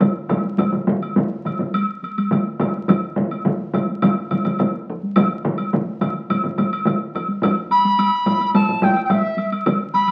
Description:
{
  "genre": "japanese traditional, taiko drum ensemble",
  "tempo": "106 BPM",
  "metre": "4/4",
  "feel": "straight",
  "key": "unclear",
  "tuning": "A4 = 436 Hz",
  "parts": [
    { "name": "solo taiko drums", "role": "percussion", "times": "0.0-9.2 s", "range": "none", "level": "-24 LUFS", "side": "equal", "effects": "none" },
    { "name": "taiko ensemble", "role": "percussion", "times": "0.0-10.1 s", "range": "none", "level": "-26 LUFS", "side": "equal", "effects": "none" },
    { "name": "taiko ensemble", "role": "percussion", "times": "0.0-9.8 s", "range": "none", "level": "-28 LUFS", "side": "equal", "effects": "none" },
    { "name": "woodblock", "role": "percussion", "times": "0.0-10.1 s", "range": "none", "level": "-29 LUFS", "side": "equal", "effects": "none" },
    { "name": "taiko ensemble", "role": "percussion", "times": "0.3-9.8 s", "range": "none", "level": "-27 LUFS", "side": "equal", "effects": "none" },
    { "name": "bright dizi", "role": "melody", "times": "7.7-10.1 s", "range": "E5 to B5", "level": "-20 LUFS", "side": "equal", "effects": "none" }
  ],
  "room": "wet studio reverb, RT60 0.8 s",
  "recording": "very old 78 rpm record, vinyl crackle",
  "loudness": "-20 LUFS",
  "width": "mono",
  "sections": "0.0-7.4 A section; 7.4-10.1 B section",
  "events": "speeding up 0.0-10.1",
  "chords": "none"
}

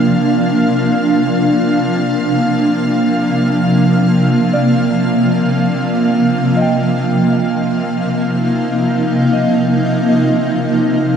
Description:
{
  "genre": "ambient",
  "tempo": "free time",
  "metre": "none",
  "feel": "none",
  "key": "Bb major",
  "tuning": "A4 = 443 Hz",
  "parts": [
    { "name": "granular cloud pad", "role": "sustained chords", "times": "0.0-11.2 s", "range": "C3 to Eb4", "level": "-12 LUFS", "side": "equal", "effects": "built-in reverb" },
    { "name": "soft synth bell", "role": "arpeggios", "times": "0.0-11.2 s", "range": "Bb4 to G5", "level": "-25 LUFS", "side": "equal", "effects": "chorus, phaser, diffuse ambient delay" },
    { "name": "warm studio violin section", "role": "texture", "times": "0.0-11.2 s", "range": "F5 to F6", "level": "-23 LUFS", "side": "left 1 dB", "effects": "none" }
  ],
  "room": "wet huge ambient reverb, RT60 8.3 s",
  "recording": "dark, warm production",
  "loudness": "-12 LUFS",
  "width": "side -7 dB against mid",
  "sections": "0.0-11.2 A section",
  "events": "fade-in on synth bell 0.0-11.2; fade-out on violin section 0.0-11.2",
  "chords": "0.0 Bbmaj13; 6.0 Cm11"
}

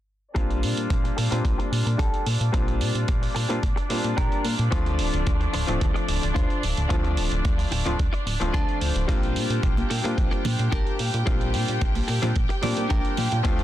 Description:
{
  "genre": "nu-disco, nu disco",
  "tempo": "110 BPM",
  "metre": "4/4",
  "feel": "straight",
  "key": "Bb major",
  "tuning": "A4 = 437 Hz",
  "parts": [
    { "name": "bright concert grand piano", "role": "accompaniment", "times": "0.3-13.6 s", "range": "F3 to F4", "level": "-29 LUFS", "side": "left 2 dB", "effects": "sidechain pumping, low-pass filter, tape echo" },
    { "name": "clear studio string section", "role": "sustained chords", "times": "0.3-13.6 s", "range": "D4 to G5", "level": "-34 LUFS", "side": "equal", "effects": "sidechain pumping, low-pass filter" },
    { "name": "clean electric guitar", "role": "riff", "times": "0.3-13.6 s", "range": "D4 to A5", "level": "-33 LUFS", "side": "left 1 dB", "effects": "analog chorus, low-pass filter, tape echo" },
    { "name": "chorused synth bass", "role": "bass", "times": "0.4-13.6 s", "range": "D1 to Bb2", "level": "-26 LUFS", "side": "equal", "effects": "sidechain pumping" },
    { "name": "electronic hi-hat", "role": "drums", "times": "0.4-13.6 s", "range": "none", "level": "-33 LUFS", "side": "right 5 dB", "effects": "none" },
    { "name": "electronic kick drum", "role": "drums", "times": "0.4-13.6 s", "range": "none", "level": "-25 LUFS", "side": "equal", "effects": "none" },
    { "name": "congas", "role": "percussion", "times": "9.8-13.3 s", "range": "none", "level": "-34 LUFS", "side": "right 3 dB", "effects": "none" }
  ],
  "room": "studio ambience",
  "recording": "dense, heavily limited modern master",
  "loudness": "-22 LUFS",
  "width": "side -13 dB against mid",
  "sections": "0.4-13.6 A section",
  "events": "filter sweep on analog synth bass 0.4-13.6; filter sweep on clean electric guitar 0.4-13.6; filter sweep on string section 0.4-13.6; clean electric guitar fill 8.3-9.1, 12.4-13.4",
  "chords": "0.4 Bb6; 4.7 Dm7; 9.1 Bb6"
}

